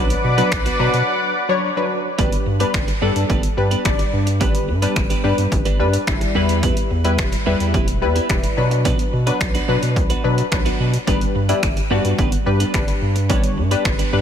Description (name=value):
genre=dance-pop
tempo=108 BPM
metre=4/4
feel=straight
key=unclear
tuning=A4 = 440 Hz
part: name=funky polysynth comp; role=accompaniment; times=0.0-14.2 s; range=F#3 to D5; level=-21 LUFS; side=left 3 dB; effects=chorus, sidechain pumping
part: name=lush unison pad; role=sustained chords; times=0.0-2.2 s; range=B4 to D6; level=-22 LUFS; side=left 1 dB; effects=chorus, sidechain pumping
part: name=twelve-string electric guitar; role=riff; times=0.0-14.2 s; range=B3 to B4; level=-26 LUFS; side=right 6 dB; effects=wide subtle chorus
part: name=saturated sub bass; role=bass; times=0.0-14.2 s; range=E1 to B2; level=-20 LUFS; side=equal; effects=sidechain pumping
part: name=punchy analog drum machine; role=drums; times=0.1-14.1 s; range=finger snaps, hi-hat, kick drum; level=-21 LUFS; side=equal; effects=none
room=moderate lush hall reverb, RT60 2.4 s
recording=dreamy mix soaked in reverb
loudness=-16 LUFS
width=side -9 dB against mid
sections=0.0-2.2 A section; 2.2-14.2 B section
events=break 1.1-2.2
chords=0.0 Bm; 2.2 G; 6.4 Em; 8.6 Bm; 11.1 G